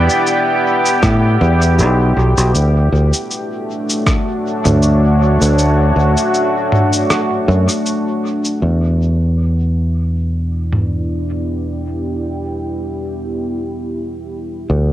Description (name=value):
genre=ambient dub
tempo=79 BPM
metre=4/4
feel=swing 55% on 16ths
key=E dorian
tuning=A4 = 440 Hz
part: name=deep dark ambient pad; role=sustained chords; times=0.0-14.9 s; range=A3 to G5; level=-17 LUFS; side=equal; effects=chorus, built-in reverb
part: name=fingered electric bass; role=bass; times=0.0-14.9 s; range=B1 to A2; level=-14 LUFS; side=equal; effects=none
part: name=lo-fi sampler-style drum kit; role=drums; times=0.1-10.9 s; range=cabasa, rim click, toms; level=-20 LUFS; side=equal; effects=low-pass filter on perc, studio ambience, cassette tape, low-pass filter on snare, low-pass filter on toms, dub echo
part: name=electronic kick drum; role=drums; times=1.0-4.2 s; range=none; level=-17 LUFS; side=equal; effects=studio ambience, cassette tape
room=digital ambience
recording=home recording on cassette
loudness=-13 LUFS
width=side -13 dB against mid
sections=0.0-8.6 A section; 8.6-14.9 B section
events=kick drops out 5.6-8.6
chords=0.0 Em7; 2.5 Dmaj7; 8.6 Em7